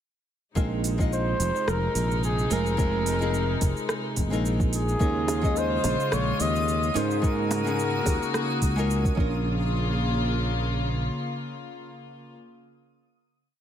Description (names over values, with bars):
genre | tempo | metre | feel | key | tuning
sunset chillout | 108 BPM | 4/4 | swing 55% on 16ths | Bb minor | A4 = 442 Hz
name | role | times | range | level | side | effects
nylon-string guitar | accompaniment | 0.6-12.4 s | Ab3 to Eb5 | -31 LUFS | equal | auto-pan, digital delay
warm chamber string section | sustained chords | 0.6-12.3 s | C3 to Gb4 | -31 LUFS | left 2 dB | none
sustaining fretless electric bass | bass | 0.6-11.1 s | F1 to Ab2 | -27 LUFS | equal | lush chorus
electronic kick drum | drums | 0.6-9.3 s | none | -25 LUFS | equal | overdrive
smooth R&B drum kit | drums | 0.6-9.2 s | hi-hat, rim click, shaker | -33 LUFS | right 2 dB | overdrive
trumpet with bucket mute | melody | 1.1-8.9 s | Ab4 to Eb5 | -29 LUFS | equal | digital delay
twinkling granular texture | texture | 5.6-9.5 s | Eb6 | -39 LUFS | right 1 dB | built-in reverb
bongos | percussion | 5.3-8.2 s | none | -34 LUFS | right 1 dB | none
room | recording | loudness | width
light reverb, small room ambience | none | -23 LUFS | side -9 dB against mid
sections
0.6-9.5 groove; 9.5-11.7 final hit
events
none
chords
0.6 Bb9sus4; 5.0 Eb9sus4; 7.2 Ab9sus4; 9.2 Bbm